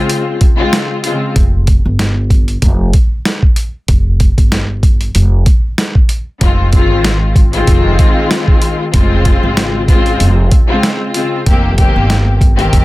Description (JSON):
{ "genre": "hip hop, boom-bap hip-hop", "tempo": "95 BPM", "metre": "4/4", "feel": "swing 55% on 16ths", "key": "F minor", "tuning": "A4 = 442 Hz", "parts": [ { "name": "warm symphonic string section", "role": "accompaniment", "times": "0.0-1.3, 6.4-12.8 s", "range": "Db3 to G4", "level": "-15 LUFS", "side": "left 2 dB", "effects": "high-pass filter, low-pass filter" }, { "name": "boom bap sampler-style drum kit", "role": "drums", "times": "0.1-12.8 s", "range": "hi-hat, kick drum, snare drum", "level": "-11 LUFS", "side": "equal", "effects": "none" }, { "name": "upright bass", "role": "bass", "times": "1.4-12.8 s", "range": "F1 to Ab1", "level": "-13 LUFS", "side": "equal", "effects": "none" } ], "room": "little or no reverb", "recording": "dense, heavily limited modern master", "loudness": "-9 LUFS", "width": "side -19 dB against mid", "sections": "0.0-12.8 A section", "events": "break 0.0-1.4", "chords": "0.0 Dbmaj7; 1.4 Fsus2; 6.4 Fm7; 8.9 Dbmaj7/F; 11.5 Cm7/F", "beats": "0.10 0.73 | 1.36 1.99 2.62 3.25 | 3.89 4.52 5.15 5.78 | 6.41 7.04 7.67 8.31 | 8.94 9.57 10.20 10.83 | 11.46 12.10 12.73" }